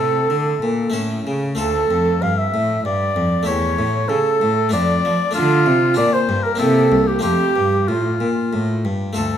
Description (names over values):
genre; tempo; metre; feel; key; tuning
classical, baroque-style sonata movement with continuo; 95 BPM; 3/4; rubato; D minor, F major from 5.4 s; A4 = 440 Hz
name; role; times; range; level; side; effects
warm oboe; melody; 0.0-9.4 s; F4 to F5; -22 LUFS; left 7 dB; none
mellow hollow concert flute; second line; 0.0-8.8 s; F4 to F5; -20 LUFS; right 6 dB; none
harpsichord; accompaniment; 0.0-9.4 s; C2 to A4; -23 LUFS; left 3 dB; none
rich cello; bass; 0.0-9.4 s; C2 to F3; -21 LUFS; equal; none
room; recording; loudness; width
moderate recital hall reverb, RT60 1.6 s; none; -16 LUFS; side -9 dB against mid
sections
0.0-9.2 A section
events
none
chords
0.0 Asus4; 0.9 A; 1.6 Dm; 3.5 A7/E; 4.7 Dm/F; 5.4 Dm; 6.0 Gm7/Bb; 6.6 C7; 7.2 F